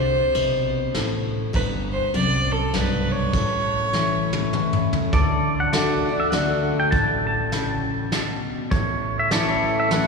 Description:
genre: honky-tonk and classic country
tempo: 100 BPM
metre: 3/4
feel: swing 60% on 8ths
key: D major from 5.1 s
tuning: A4 = 441 Hz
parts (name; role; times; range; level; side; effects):
- clear fiddle; second line; 0.0-4.9 s; A4 to D5; -25 LUFS; right 1 dB; none
- picked steel-string acoustic guitar; accompaniment; 0.0-10.1 s; F#2 to F#4; -24 LUFS; left 3 dB; none
- upright bass; bass; 0.0-10.0 s; G1 to D2; -28 LUFS; right 1 dB; none
- soft brush drum kit; drums; 0.3-10.1 s; hi-hat, kick drum, ride cymbal, snare drum, toms; -27 LUFS; equal; none
- pedal steel guitar; melody; 5.1-10.1 s; C#5 to A5; -24 LUFS; right 1 dB; none
- pedal steel guitar; sustained chords; 5.1-10.1 s; A4 to D5; -31 LUFS; equal; none
room: wet cathedral reverb, RT60 4.9 s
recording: recorded in a church or concert hall, studio reverb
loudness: -20 LUFS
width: side -4 dB against mid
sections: 0.0-5.1 A section; 5.1-10.1 B section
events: fiddle solo 0.0-5.1; drum fill 3.9-5.1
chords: 0.0 Amadd9; 1.5 G; 3.3 A; 5.1 D; 8.7 A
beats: 0.35 0.95 | 1.55 2.15 2.74 | 3.34 3.94 4.54 | 5.13 5.73 6.33 | 6.92 7.52 8.12 | 8.71 9.31 9.91

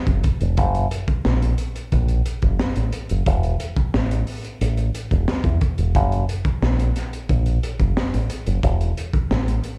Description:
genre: funk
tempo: 89 BPM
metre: 4/4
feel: straight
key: unclear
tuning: A4 = 441 Hz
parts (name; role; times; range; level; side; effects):
- fingered electric bass with an envelope filter; bass; 0.1-9.6 s; E1 to E2; -22 LUFS; equal; none
- crunchy breakbeat drum kit; drums; 0.1-9.8 s; hi-hat, kick drum, snare drum; -25 LUFS; equal; none
room: little or no reverb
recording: live gig heard through the venue's PA, club reverb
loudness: -21 LUFS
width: mono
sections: 0.0-9.8 A section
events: none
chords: none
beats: | 0.58 1.25 1.92 2.59 | 3.27 3.94 4.61 5.28 | 5.95 6.62 7.29 7.96 | 8.63 9.30

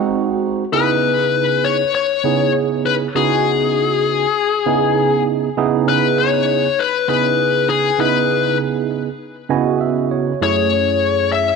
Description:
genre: blues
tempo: 99 BPM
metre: 4/4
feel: swing 55% on 16ths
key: C# minor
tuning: A4 = 440 Hz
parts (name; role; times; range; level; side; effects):
- tine electric piano; accompaniment; 0.0-11.5 s; F#2 to G#5; -18 LUFS; right 8 dB; phaser
- smooth overdriven lead guitar; melody; 0.7-11.6 s; G#4 to E5; -17 LUFS; left 10 dB; none
room: moderate echo chamber reverb, RT60 2.4 s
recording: 1960s-style stereo with parts hard left and right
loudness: -14 LUFS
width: side -5 dB against mid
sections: 0.7-11.6 A section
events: tine electric piano fill 9.2-10.4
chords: 0.0 G#7; 0.7 C#m7; 10.4 F#m7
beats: 0.12 | 0.73 1.33 1.94 2.54 | 3.15 3.76 4.36 4.97 | 5.57 6.18 6.78 7.39 | 7.99 8.59 9.20 9.80 | 10.41 11.01

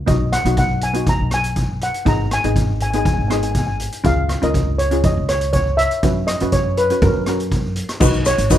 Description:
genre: calypso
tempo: 121 BPM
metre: 4/4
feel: straight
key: B major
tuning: A4 = 438 Hz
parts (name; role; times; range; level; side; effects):
- upright bass; bass; 0.0-8.6 s; G#1 to F#2; -21 LUFS; equal; none
- steel pan; melody; 0.1-8.6 s; A#4 to A#5; -21 LUFS; equal; none
- steel pan; accompaniment; 0.1-8.6 s; B3 to B4; -22 LUFS; left 1 dB; none
- street-band drum kit; drums; 0.1-8.6 s; crash cymbal, hi-hat, kick drum, rim click; -20 LUFS; equal; none
- egg shaker; percussion; 8.0-8.6 s; none; -27 LUFS; left 8 dB; none
room: light reverb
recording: none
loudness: -16 LUFS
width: side -11 dB against mid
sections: 0.0-8.0 A section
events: none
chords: 0.1 B; 2.1 G#m; 4.1 C#; 6.0 F#sus4; 7.0 F#; 8.0 B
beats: | 0.08 0.58 1.07 1.57 | 2.07 2.56 3.06 3.56 | 4.05 4.55 5.04 5.54 | 6.04 6.53 7.03 7.52 | 8.02 8.51

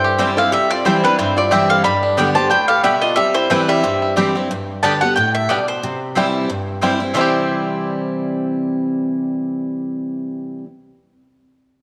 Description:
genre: bluegrass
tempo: 181 BPM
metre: 4/4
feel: swing 55% on 8ths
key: C major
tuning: A4 = 441 Hz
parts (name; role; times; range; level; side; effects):
- mandolin; melody; 0.0-10.6 s; B4 to B5; -20 LUFS; equal; none
- lap resonator guitar; second line; 0.0-4.1 s; D4 to D5; -25 LUFS; equal; slapback echo
- picked steel-string acoustic guitar; accompaniment; 0.0-10.7 s; G2 to G4; -23 LUFS; equal; none
- bluegrass banjo; arpeggios; 0.0-10.6 s; G3 to G4; -25 LUFS; equal; slapback echo
- mandolin; stabs; 0.2-10.7 s; B3 to G5; -26 LUFS; equal; none
room: wet echo chamber reverb, RT60 2.3 s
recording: none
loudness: -18 LUFS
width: mono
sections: 0.0-4.5 A section; 4.5-7.2 B section; 7.2-9.8 C section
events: none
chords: 0.0 C; 1.8 G; 3.2 C; 4.5 G; 5.8 C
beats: 0.19 | 0.52 0.85 1.18 1.51 | 1.85 2.18 2.51 2.84 | 3.17 3.50 3.84 4.17 | 4.50 4.83 5.17 5.50 | 5.83 6.16 6.49 6.82 | 7.16 7.49 7.82 8.15 | 8.48 8.81 9.15 9.48

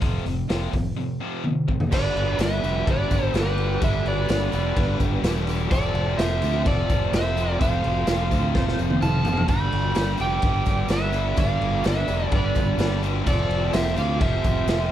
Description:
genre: classic rock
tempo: 127 BPM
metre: 4/4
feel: straight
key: G mixolydian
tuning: A4 = 435 Hz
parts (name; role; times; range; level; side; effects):
- cranked stack guitar; riff; 0.0-14.9 s; F2 to G3; -31 LUFS; right 11 dB; overdrive, phaser
- tight distorted guitar; riff; 0.0-14.9 s; F2 to G3; -31 LUFS; left 14 dB; distortion
- fingered electric bass; bass; 0.0-14.9 s; E1 to D2; -26 LUFS; equal; none
- raw garage drum kit; drums; 0.0-14.8 s; crash cymbal, hi-hat, kick drum, snare drum, toms; -25 LUFS; equal; none
- overdriven slide guitar; melody; 1.9-14.9 s; B4 to B5; -27 LUFS; right 2 dB; none
- octave-fuzz lead guitar; second line; 1.9-14.9 s; G4 to G5; -35 LUFS; right 1 dB; distortion
- tonewheel organ; sustained chords; 1.9-14.9 s; B3 to C5; -38 LUFS; equal; none
- overdriven electric guitar; riff; 1.9-14.9 s; F2 to D4; -34 LUFS; equal; none
- tambourine; percussion; 1.9-14.8 s; none; -46 LUFS; right 14 dB; none
room: little or no reverb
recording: none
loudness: -20 LUFS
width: side -11 dB against mid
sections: 0.0-1.9 A section; 1.9-14.9 B section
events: drum fill 1.4-1.9, 8.5-9.5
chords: 0.0 F5; 1.9 G; 5.7 F; 9.5 G; 13.3 F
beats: | 0.02 0.49 0.97 1.44 | 1.92 2.39 2.87 3.34 | 3.81 4.29 4.76 5.23 | 5.71 6.18 6.65 7.12 | 7.60 8.07 8.54 9.01 | 9.49 9.96 10.43 10.90 | 11.38 11.85 12.32 12.79 | 13.27 13.74 14.21 14.69

